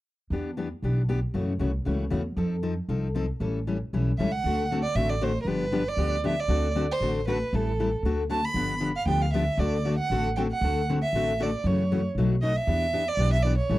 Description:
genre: acoustic string swing (jazz manouche)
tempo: 233 BPM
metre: 4/4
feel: swing 55% on 8ths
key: D mixolydian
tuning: A4 = 443 Hz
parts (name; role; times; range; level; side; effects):
- picked steel-string acoustic guitar; accompaniment; 0.3-13.8 s; B2 to A4; -29 LUFS; left 3 dB; none
- upright bass; bass; 0.3-13.8 s; G1 to F#2; -27 LUFS; equal; none
- warm violin; melody; 4.2-13.8 s; A4 to B5; -28 LUFS; right 3 dB; none
room: small room ambience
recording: dry, close 1970s-style studio recording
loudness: -24 LUFS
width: side -16 dB against mid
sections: 0.3-4.4 A section; 4.4-13.8 B section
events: none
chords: 0.3 Em7; 1.3 F#m7; 2.4 F7; 3.4 A7; 4.4 D7; 5.5 G7; 6.5 D7; 7.5 Am7; 8.0 D7; 8.5 G7; 9.6 D7; 11.6 F#m7; 12.1 B7; 12.7 Em7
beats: | 0.31 0.57 0.83 1.08 | 1.34 1.60 1.86 2.12 | 2.37 2.63 2.89 3.15 | 3.40 3.66 3.92 4.18 | 4.43 4.69 4.95 5.21 | 5.46 5.72 5.98 6.23 | 6.49 6.75 7.01 7.26 | 7.52 7.78 8.04 8.29 | 8.55 8.81 9.06 9.32 | 9.58 9.84 10.09 10.35 | 10.61 10.86 11.12 11.38 | 11.63 11.89 12.15 12.41 | 12.66 12.92 13.18 13.43 | 13.69

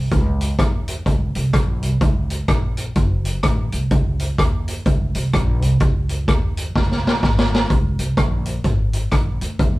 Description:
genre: ska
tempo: 127 BPM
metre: 4/4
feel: swing 60% on 8ths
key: unclear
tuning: A4 = 440 Hz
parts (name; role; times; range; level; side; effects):
- upright bass; bass; 0.0-9.8 s; Gb1 to Eb2; -21 LUFS; equal; none
- street-band drum kit; drums; 0.1-9.7 s; hi-hat, kick drum, rim click, snare drum; -18 LUFS; equal; none
room: light reverb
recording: band playing live in one room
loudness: -17 LUFS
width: side -19 dB against mid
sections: 0.0-7.7 A section; 7.7-9.8 B section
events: drum fill 6.8-7.7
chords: none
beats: | 0.12 0.59 1.06 1.54 | 2.01 2.49 2.96 3.44 | 3.91 4.38 4.86 5.33 | 5.81 6.28 6.75 7.23 | 7.70 8.17 8.65 9.12 | 9.60

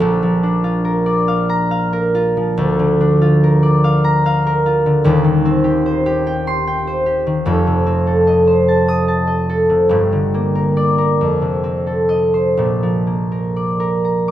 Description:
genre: classical, solo harp piece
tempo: 40-51 BPM (dotted quarters)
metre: 6/8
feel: rubato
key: Bb major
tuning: A4 = 441 Hz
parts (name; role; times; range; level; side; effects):
- concert harp; solo; 0.0-14.3 s; Eb1 to Eb6; -13 LUFS; equal; none
room: moderate recital hall reverb, RT60 1.5 s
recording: none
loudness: -13 LUFS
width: side -12 dB against mid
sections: 0.0-14.3 A section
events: none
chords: 0.0 Bb; 2.6 Bb/D; 5.1 Cm/Eb; 7.5 F7; 9.9 Gm; 11.2 F7; 12.6 Bb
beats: | 0.01 1.29 | 2.58 3.84 | 5.05 6.26 | 7.46 8.68 | 9.91 11.20 | 12.60 14.05

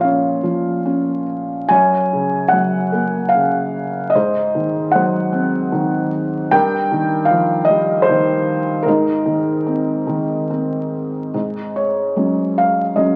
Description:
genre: classical, lyrical solo piano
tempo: 75 BPM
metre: 3/4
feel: uneven beats, rubato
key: unclear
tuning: A4 = 441 Hz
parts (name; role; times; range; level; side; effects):
- felt-muted upright piano; solo; 0.0-13.2 s; Gb2 to Ab5; -18 LUFS; equal; none
room: moderate recital hall reverb, RT60 1.6 s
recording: very old 78 rpm record, vinyl crackle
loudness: -18 LUFS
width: mono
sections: 0.0-11.3 A section; 11.3-13.2 B section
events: none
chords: 0.0 Bbm; 1.7 Gb; 4.1 Ab7; 6.5 Ebadd9/G; 8.9 Abadd9; 11.3 Ab7sus4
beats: 0.04 0.86 | 1.70 2.53 3.34 | 4.15 4.94 5.73 | 6.51 7.29 8.08 | 8.86 9.67 10.51 | 11.35 12.16 12.96

